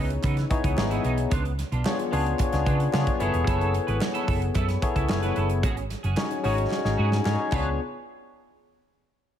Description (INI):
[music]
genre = polished 1980s jazz-funk pop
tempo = 111 BPM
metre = 4/4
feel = straight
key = C# minor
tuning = A4 = 440 Hz
[part]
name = barky tine electric piano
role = accompaniment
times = 0.0-7.8 s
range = B3 to C#5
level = -28 LUFS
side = left 4 dB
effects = analog chorus
[part]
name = clean electric guitar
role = riff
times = 0.0-7.7 s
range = E3 to B4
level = -34 LUFS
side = right 6 dB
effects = ensemble chorus
[part]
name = hollow-body short-scale fingered electric bass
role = bass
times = 0.0-7.8 s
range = E1 to C#3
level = -26 LUFS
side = right 1 dB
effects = none
[part]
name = modern studio drum kit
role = drums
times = 0.1-7.6 s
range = crash cymbal, hi-hat, kick drum, snare drum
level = -28 LUFS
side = right 1 dB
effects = gated reverb
[part]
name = group handclap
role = percussion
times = 0.2-7.8 s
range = none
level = -45 LUFS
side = right 7 dB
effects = none
[sound]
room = light reverb, small room ambience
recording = none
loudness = -22 LUFS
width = side -10 dB against mid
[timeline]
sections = 0.0-7.8 A section; 7.8-9.4 B section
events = drum fill 6.7-7.8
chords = 0.0 C#m9; 1.3 C#7b9; 3.2 F#m11; 5.6 G#7sus4; 7.5 C#7b9; 7.8 N.C.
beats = 0.24 0.78 | 1.31 1.85 2.39 2.93 | 3.47 4.01 4.55 5.09 | 5.63 6.17 6.71 7.25 | 7.79